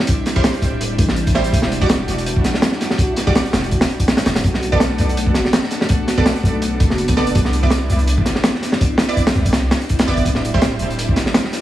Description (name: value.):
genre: drum and bass, jungle.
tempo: 165 BPM.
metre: 4/4.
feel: swing 55% on 16ths.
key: unclear.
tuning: A4 = 443 Hz.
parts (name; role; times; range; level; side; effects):
airy breathy pad; sustained chords; 0.0-11.6 s; G3 to F#4; -23 LUFS; left 1 dB; chorus.
crunchy breakbeat drum kit; drums; 0.0-11.6 s; hi-hat, kick drum, snare drum; -17 LUFS; equal; none.
orchestra-hit-like synth stab; stabs; 0.4-10.6 s; G3 to D5; -24 LUFS; right 3 dB; built-in reverb, dub echo.
long sustained 808-style bass; bass; 0.6-11.3 s; D1 to C2; -20 LUFS; equal; none.
room: light reverb, small room ambience.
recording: heavily compressed radio sound, multiband compression.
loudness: -14 LUFS.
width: side -13 dB against mid.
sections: 0.0-4.4 A section; 4.4-11.6 A section.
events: drop 0.0-4.4, 4.4-11.6.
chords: 0.0 D9sus4; 1.5 Em9; 4.4 Bm7; 7.3 Cmaj9; 10.3 D9sus4.